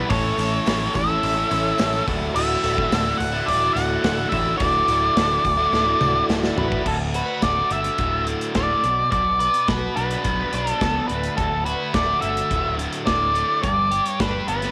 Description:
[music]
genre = classic rock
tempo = 106 BPM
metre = 4/4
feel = straight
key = D major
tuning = A4 = 440 Hz
[part]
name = octave-fuzz lead guitar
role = melody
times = 0.0-14.7 s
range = A4 to F#5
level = -24 LUFS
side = equal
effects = distortion
[part]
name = picked twelve-string acoustic guitar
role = accompaniment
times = 0.0-6.9 s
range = A2 to A4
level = -33 LUFS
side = equal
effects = none
[part]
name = mellow tonewheel organ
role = sustained chords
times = 0.0-6.8 s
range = E4 to E5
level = -34 LUFS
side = equal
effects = none
[part]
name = biting overdriven guitar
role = riff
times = 0.0-14.7 s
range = D2 to B4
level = -28 LUFS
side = equal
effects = none
[part]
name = growling picked electric bass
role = bass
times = 0.0-14.7 s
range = D1 to C#2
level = -30 LUFS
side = equal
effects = overdrive
[part]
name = big rock drum kit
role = drums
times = 0.1-14.7 s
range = crash cymbal, hi-hat, kick drum, snare drum, toms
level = -29 LUFS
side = equal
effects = none
[part]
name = tambourine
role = percussion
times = 0.2-6.8 s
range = none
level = -49 LUFS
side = equal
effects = none
[sound]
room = light reverb, studio reverb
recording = none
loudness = -21 LUFS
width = mono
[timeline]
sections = 0.0-6.9 A section; 6.9-14.7 B section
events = drum fill 5.7-6.9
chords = 0.1 A; 2.1 Dadd9; 6.9 D; 8.8 Bm; 11.1 D; 13.6 G

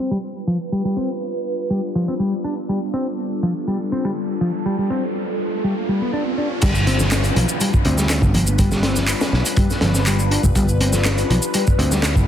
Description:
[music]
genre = breakbeat, breaks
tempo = 122 BPM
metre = 4/4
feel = straight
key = unclear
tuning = A4 = 441 Hz
[part]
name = phased analog pad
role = sustained chords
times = 0.0-12.3 s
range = G3 to B4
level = -25 LUFS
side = left 2 dB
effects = phaser, chorus, sidechain pumping
[part]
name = picked electric bass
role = riff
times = 0.0-12.0 s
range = F3 to D4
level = -23 LUFS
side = equal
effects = tube saturation, low-pass filter, dub echo
[part]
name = riser and downlifter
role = sound effects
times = 4.1-10.6 s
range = none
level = -29 LUFS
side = right 1 dB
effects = none
[part]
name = picked electric bass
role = bass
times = 6.6-12.3 s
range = F1 to D2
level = -19 LUFS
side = equal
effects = none
[part]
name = crunchy breakbeat drum kit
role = drums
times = 6.6-12.3 s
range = crash cymbal, hi-hat, kick drum, snare drum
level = -20 LUFS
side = equal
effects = none
[part]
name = electronic shaker and handclaps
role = drums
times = 6.6-12.3 s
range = none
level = -25 LUFS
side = equal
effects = overdrive, low-pass filter on perc, low-pass filter on snare
[part]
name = congas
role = percussion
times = 6.9-11.0 s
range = none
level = -30 LUFS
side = left 4 dB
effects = none
[sound]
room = light reverb, small room ambience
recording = dense, heavily limited modern master, low-pass filter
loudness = -17 LUFS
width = side -10 dB against mid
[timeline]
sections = 0.0-6.6 A section; 6.6-12.3 B section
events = filter sweep on analog synth pad 0.0-6.6; filter sweep 0.0-6.6; riser 4.1-6.6; drop 6.6-12.3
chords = 0.0 G7

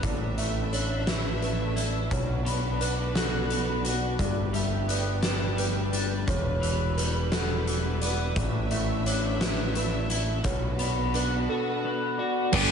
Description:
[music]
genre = post-rock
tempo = 58 BPM (dotted quarters)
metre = 6/8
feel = straight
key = unclear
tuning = A4 = 439 Hz
[part]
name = clear studio string section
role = sustained chords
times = 0.0-12.5 s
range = G3 to E5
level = -35 LUFS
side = right 1 dB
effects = none
[part]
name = electric guitar at the edge of break-up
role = arpeggios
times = 0.0-12.7 s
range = E2 to F#4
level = -31 LUFS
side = left 2 dB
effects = analog chorus, tape echo
[part]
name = felt-muted upright piano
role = arpeggios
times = 0.0-12.7 s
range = A4 to E5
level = -35 LUFS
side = right 5 dB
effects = tape echo
[part]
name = growling picked electric bass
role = bass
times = 0.0-12.7 s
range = E1 to B1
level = -29 LUFS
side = equal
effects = overdrive
[part]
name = oversized low-tuned drum kit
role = drums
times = 0.0-12.7 s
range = crash cymbal, hi-hat, kick drum, snare drum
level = -30 LUFS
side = left 1 dB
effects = none
[part]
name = cranked stack guitar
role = riff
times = 12.5-12.7 s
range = G2 to G4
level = -25 LUFS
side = left 8 dB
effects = overdrive
[part]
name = sludgy distorted guitar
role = riff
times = 12.5-12.7 s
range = G2 to G4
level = -24 LUFS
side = right 13 dB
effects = overdrive
[sound]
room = moderate lush hall reverb, RT60 2.0 s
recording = dreamy mix soaked in reverb, nothing above 10.6 kHz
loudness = -25 LUFS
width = side -7 dB against mid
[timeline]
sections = 0.0-12.5 A section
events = none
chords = 0.0 Asus4; 2.1 Bmadd9; 4.2 Gadd9; 6.3 Em7; 8.4 Asus4; 10.4 Bmadd9

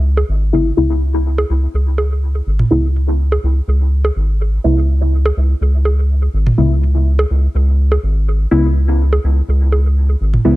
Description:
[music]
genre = dub techno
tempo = 124 BPM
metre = 4/4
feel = swing 53% on 16ths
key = C# minor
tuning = A4 = 440 Hz
[part]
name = round analog bass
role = bass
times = 0.0-10.6 s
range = G#1 to C#2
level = -13 LUFS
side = equal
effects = none
[part]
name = electronic bongos and toms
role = percussion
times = 0.2-10.4 s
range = none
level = -21 LUFS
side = right 2 dB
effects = overdrive, dub echo
[part]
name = deep mellow chord stab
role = stabs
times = 0.5-10.6 s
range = C#3 to E4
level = -18 LUFS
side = left 1 dB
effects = chorus, phaser, dub echo
[sound]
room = little or no reverb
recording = none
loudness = -12 LUFS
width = side -18 dB against mid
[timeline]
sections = 0.0-10.6 A section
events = filter sweep on synth stab 0.0-10.6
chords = 0.0 C#m7

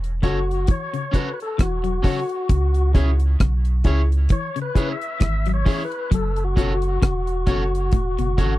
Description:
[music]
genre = roots reggae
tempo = 66 BPM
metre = 4/4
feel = swing 56% on 16ths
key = F# minor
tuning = A4 = 439 Hz
[part]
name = warm sub bass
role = bass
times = 0.0-8.6 s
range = E1 to C#2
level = -21 LUFS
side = equal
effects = none
[part]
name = deep reggae drum kit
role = drums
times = 0.0-8.6 s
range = hi-hat, kick drum, rim click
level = -18 LUFS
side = equal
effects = none
[part]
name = tonewheel organ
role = melody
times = 0.2-8.6 s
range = F#4 to E5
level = -27 LUFS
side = left 3 dB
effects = overdrive, fast rotary speaker, dub echo
[part]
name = electric guitar at the edge of break-up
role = accompaniment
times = 0.2-8.5 s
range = C#4 to C#5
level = -31 LUFS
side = right 3 dB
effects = dub echo
[part]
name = electric guitar at the edge of break-up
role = arpeggios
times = 0.2-8.6 s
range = A2 to F#3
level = -29 LUFS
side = left 7 dB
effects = tremolo
[part]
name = dark upright piano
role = stabs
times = 0.2-8.6 s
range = E4 to C#5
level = -30 LUFS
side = left 5 dB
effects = none
[sound]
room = little or no reverb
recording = dry, close 1970s-style studio recording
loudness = -18 LUFS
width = side -16 dB against mid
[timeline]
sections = 0.0-8.6 A section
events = tonewheel organ solo 0.0-8.6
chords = 0.0 F#m; 2.5 C#m; 6.1 F#m

